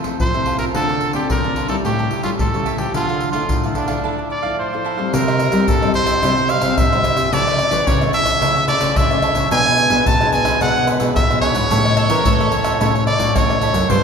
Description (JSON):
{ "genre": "samba and choro", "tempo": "110 BPM", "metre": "4/4", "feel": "straight", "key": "unclear", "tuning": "A4 = 440 Hz", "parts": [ { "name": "cavaquinho", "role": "accompaniment", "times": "0.0-14.0 s", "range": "D4 to F5", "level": "-26 LUFS", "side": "right 6 dB", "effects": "none" }, { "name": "nylon-string guitar", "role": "accompaniment", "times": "0.0-14.0 s", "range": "G2 to F4", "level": "-26 LUFS", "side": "left 4 dB", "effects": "none" }, { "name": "surdo, pandeiro, tube shaker and tamborim", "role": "percussion", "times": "0.0-14.0 s", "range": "none", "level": "-20 LUFS", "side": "left 1 dB", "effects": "none" }, { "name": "brilliant trumpet", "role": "melody", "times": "0.2-14.0 s", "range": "D4 to A5", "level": "-18 LUFS", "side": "right 1 dB", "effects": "none" }, { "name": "nylon-string guitar", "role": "bass", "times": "0.2-14.0 s", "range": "F#2 to G3", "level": "-22 LUFS", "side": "equal", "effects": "none" }, { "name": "bowl-back mandolin", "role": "second line", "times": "12.0-12.9 s", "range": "A4 to Bb4", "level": "-25 LUFS", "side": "left 1 dB", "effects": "none" } ], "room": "wet church reverb, RT60 2.6 s", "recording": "recorded in a church or concert hall", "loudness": "-14 LUFS", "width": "side -6 dB against mid", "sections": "0.0-5.1 A section; 5.1-14.0 B section", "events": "break 4.0-5.1", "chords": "0.0 Fmaj7; 0.7 Dm7; 1.8 A7; 2.9 Dmadd9; 5.1 C; 7.3 A/C#; 9.5 E7/B; 11.7 A" }